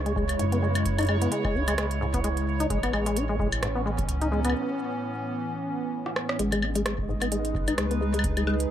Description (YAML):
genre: IDM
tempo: 130 BPM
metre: 4/4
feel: swing 56% on 16ths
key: G# phrygian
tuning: A4 = 440 Hz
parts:
  - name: hollow soft pad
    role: sustained chords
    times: 0.0-8.7 s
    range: A2 to B4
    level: -32 LUFS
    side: right 1 dB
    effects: chorus
  - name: warm sub bass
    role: bass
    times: 0.0-8.7 s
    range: G#1 to F#2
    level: -29 LUFS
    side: equal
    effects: none
  - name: bubbling stepped-filter texture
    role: texture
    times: 0.0-8.7 s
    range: C#5 to D#5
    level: -36 LUFS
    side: right 6 dB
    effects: chorus, built-in reverb
  - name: deep acid bass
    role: arpeggios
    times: 0.1-8.6 s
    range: G#2 to D#4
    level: -29 LUFS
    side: left 2 dB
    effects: lush chorus, tape echo
  - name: organic electronic drum kit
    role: drums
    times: 0.1-8.7 s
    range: hi-hat, rim click, woodblock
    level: -31 LUFS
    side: equal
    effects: digital delay
  - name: electronic kick drum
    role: drums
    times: 0.2-4.1, 7.0-8.3 s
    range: none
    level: -32 LUFS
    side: equal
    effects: none
room: light reverb, digital ambience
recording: none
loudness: -24 LUFS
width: side -10 dB against mid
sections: 0.0-6.4 A section; 6.4-8.7 A section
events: break 4.5-6.4; drum fill 6.0-6.4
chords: 0.0 C#m; 2.7 Amaj7; 6.4 G#m